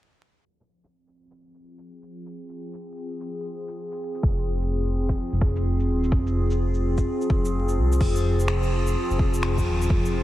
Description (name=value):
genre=future garage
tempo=127 BPM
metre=4/4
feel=swing 64% on 16ths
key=F minor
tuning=A4 = 440 Hz
part: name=warbly tape-like pad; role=sustained chords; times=2.1-10.2 s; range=F3 to Ab4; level=-28 LUFS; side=left 1 dB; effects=chorus, built-in reverb, phaser, sidechain pumping
part: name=organic electronic drum kit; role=drums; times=0.6-10.1 s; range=crash cymbal, finger snaps, shaker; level=-34 LUFS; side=equal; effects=overdrive
part: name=dark detuned saw bass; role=bass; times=4.2-10.2 s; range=Eb1 to C2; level=-24 LUFS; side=equal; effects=tube saturation, sidechain pumping
part: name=electronic kick drum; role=drums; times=4.2-10.0 s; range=none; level=-23 LUFS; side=equal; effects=overdrive
room=light reverb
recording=vinyl crackle, low-pass filter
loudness=-22 LUFS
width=side -14 dB against mid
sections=0.5-8.0 A section; 8.0-10.2 B section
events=filter sweep on ambient pad 0.5-8.0; filter sweep 0.5-8.0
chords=0.5 Fm